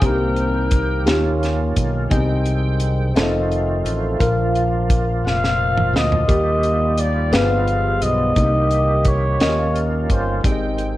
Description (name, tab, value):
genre	slow gospel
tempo	58 BPM (dotted quarters)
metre	6/8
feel	straight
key	Eb major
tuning	A4 = 440 Hz
part	growling trumpet	melody	0.0-1.4, 5.3-10.4 s	Bb4 to F5	-21 LUFS	left 1 dB	slapback echo, plate reverb
part	mellow tine electric piano	accompaniment	0.0-11.0 s	G2 to F5	-21 LUFS	left 1 dB	phaser
part	bright tonewheel organ	sustained chords	0.0-11.0 s	C3 to G5	-26 LUFS	right 4 dB	fast rotary speaker, overdrive, chorus vibrato
part	modern bright fingered electric bass	bass	0.0-11.0 s	F1 to Eb2	-22 LUFS	equal	none
part	tight funk drum kit	drums	0.0-10.9 s	hi-hat, kick drum, snare drum, toms	-20 LUFS	equal	none
room	light reverb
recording	worn, warbling old tape, cassette tape, warbly pitch drift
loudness	-16 LUFS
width	side -15 dB against mid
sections	0.0-11.0 A section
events	drum fill 5.2-6.3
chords	0.0 Cm7; 1.1 Eb9; 2.1 Abmaj7/C; 3.2 F7; 4.2 Bb; 6.3 Eb; 7.3 G7b9; 8.4 Cm7; 9.4 Eb9; 10.4 Abmaj7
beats	| 0.03 1.07 | 2.12 3.16 | 4.20 5.25 | 6.29 7.33 | 8.37 9.41 | 10.45